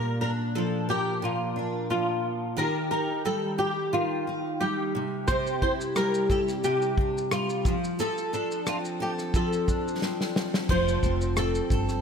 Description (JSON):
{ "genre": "acoustic pop", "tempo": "89 BPM", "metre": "4/4", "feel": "swing 55% on 16ths", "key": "unclear", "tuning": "A4 = 441 Hz", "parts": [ { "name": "flamenco guitar", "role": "melody", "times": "0.0-12.0 s", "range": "F4 to C5", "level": "-29 LUFS", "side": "equal", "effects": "ensemble chorus" }, { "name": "picked steel-string acoustic guitar", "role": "accompaniment", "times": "0.0-12.0 s", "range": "Bb2 to Bb4", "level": "-28 LUFS", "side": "equal", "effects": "double-tracked left and right" }, { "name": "natural country drum kit", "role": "drums", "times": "5.3-12.0 s", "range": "crash cymbal, kick drum, rim click, shaker, snare drum", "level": "-29 LUFS", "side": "equal", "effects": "none" }, { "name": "upright bass", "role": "bass", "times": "10.7-12.0 s", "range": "F1 to G1", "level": "-28 LUFS", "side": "equal", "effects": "none" } ], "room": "light reverb, small room ambience", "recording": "bright 1980s-style digital production", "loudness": "-25 LUFS", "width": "side -6 dB against mid", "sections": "0.0-10.7 A section; 10.7-12.0 B section", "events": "drum fill 10.0-10.7", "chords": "0.0 Bb; 2.6 Eb; 4.9 C; 7.7 F6; 10.7 F" }